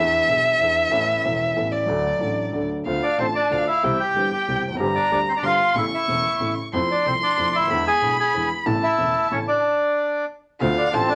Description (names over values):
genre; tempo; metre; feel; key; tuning
tango; 186 BPM; 3/4; rubato; D minor; A4 = 440 Hz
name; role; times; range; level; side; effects
warm violin; second line; 0.0-11.2 s; D5 to C#6; -25 LUFS; equal; none
warm upright piano; accompaniment; 0.0-11.1 s; E1 to A4; -29 LUFS; equal; none
rich double bass; bass; 0.0-11.1 s; E1 to F2; -35 LUFS; equal; none
bandoneon; melody; 3.0-11.2 s; C3 to G#5; -23 LUFS; equal; none
room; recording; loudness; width
wet studio reverb, RT60 0.6 s; none; -21 LUFS; mono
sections
0.0-2.9 A section; 2.9-10.6 B section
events
violin solo 0.0-2.9; stop 9.6-10.6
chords
0.0 E7; 0.9 Aadd9; 1.9 D; 2.9 Dm7; 3.8 C; 4.8 Gsus4; 5.8 A; 6.7 Fmaj7; 7.7 E7; 8.7 A; 9.6 N.C.; 10.6 Dm7